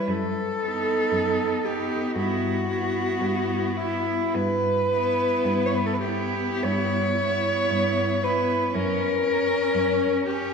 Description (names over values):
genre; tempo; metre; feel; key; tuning
classical, lyrical piece for cello ensemble; 49-60 BPM; 4/4; rubato; unclear; A4 = 443 Hz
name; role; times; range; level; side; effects
rich cello; melody; 0.0-10.5 s; E4 to C#5; -24 LUFS; left 1 dB; none
rich cello; second line; 0.0-10.5 s; C#4 to E4; -31 LUFS; right 6 dB; none
rich cello; accompaniment; 0.0-10.5 s; B3 to C#4; -30 LUFS; equal; none
rich cello; bass; 0.1-10.5 s; F#2 to G2; -30 LUFS; equal; none
room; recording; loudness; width
wet church reverb, RT60 3.0 s; recorded in a church or concert hall; -22 LUFS; side -5 dB against mid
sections
0.0-10.5 A section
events
none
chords
0.1 B7/F#; 2.2 Em/G; 8.7 F#